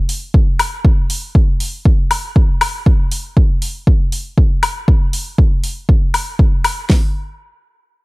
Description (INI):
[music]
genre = deep house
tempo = 119 BPM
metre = 4/4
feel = swing 60% on 16ths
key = none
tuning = none
[part]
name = electronic hi-hat and woodblock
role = drums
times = 0.1-6.8 s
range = none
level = -19 LUFS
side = left 2 dB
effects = overdrive, small room ambience
[part]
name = deep house drum kit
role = drums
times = 0.3-7.0 s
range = hi-hat, kick drum, snare drum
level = -12 LUFS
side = equal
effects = overdrive, small room ambience
[sound]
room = digital ambience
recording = dark, warm production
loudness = -12 LUFS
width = side -24 dB against mid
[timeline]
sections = 0.0-6.9 A section; 6.9-8.0 B section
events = none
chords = none